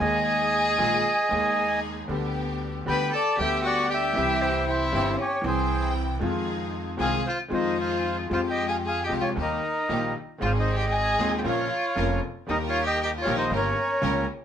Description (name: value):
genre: tango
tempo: 116 BPM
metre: 4/4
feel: rubato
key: F minor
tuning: A4 = 440 Hz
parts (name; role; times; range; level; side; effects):
- bandoneon; melody; 0.0-14.3 s; G4 to B5; -26 LUFS; right 1 dB; none
- warm violin; second line; 0.0-14.2 s; C4 to B4; -30 LUFS; left 2 dB; none
- clear concert grand piano; accompaniment; 0.0-14.2 s; Eb1 to G5; -29 LUFS; left 1 dB; none
- clear studio string section; stabs; 0.0-14.2 s; Ab3 to G5; -34 LUFS; left 1 dB; none
- upright bass; bass; 0.0-14.2 s; F1 to F2; -32 LUFS; right 1 dB; none
- warm clarinet; second line; 3.9-4.8 s; C5 to E5; -30 LUFS; left 3 dB; none
room: moderate studio reverb, RT60 0.7 s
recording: minimal, uncompressed stereo recording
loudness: -23 LUFS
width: side -9 dB against mid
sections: 0.0-8.3 A section; 8.3-14.4 B section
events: none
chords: 0.0 Ebsus4; 2.1 G/D; 4.2 C; 6.2 Fm7; 8.3 Fmadd9; 9.4 Eb; 10.4 Ab; 11.4 Bbm; 12.5 Eb; 13.5 Gdim